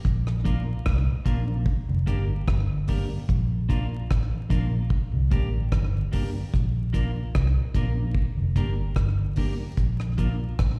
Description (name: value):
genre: roots reggae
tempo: 74 BPM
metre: 4/4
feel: straight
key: Bb major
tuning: A4 = 441 Hz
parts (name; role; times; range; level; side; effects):
- deep reggae drum kit; drums; 0.0-10.8 s; hi-hat, kick drum, rim click; -28 LUFS; equal; none
- vintage muted fingered electric bass; bass; 0.1-10.8 s; F1 to C2; -27 LUFS; equal; none
- mellow tonewheel organ; accompaniment; 0.2-10.3 s; G2 to D4; -36 LUFS; equal; chorus vibrato, slow rotary speaker, slapback echo
- clean electric guitar; accompaniment; 0.4-10.3 s; Bb3 to Bb4; -41 LUFS; equal; tape echo, slapback echo
room: little or no reverb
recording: live gig heard through the venue's PA, recital hall reverb, vinyl crackle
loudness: -25 LUFS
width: mono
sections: 0.0-10.8 A section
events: none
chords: 0.0 Bb; 1.7 Gm; 3.3 Bb; 4.9 Gm; 6.5 Bb; 8.2 Gm; 9.8 Bb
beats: | 0.04 0.86 1.67 2.48 | 3.29 4.10 4.91 5.72 | 6.53 7.34 8.15 8.96 | 9.77 10.58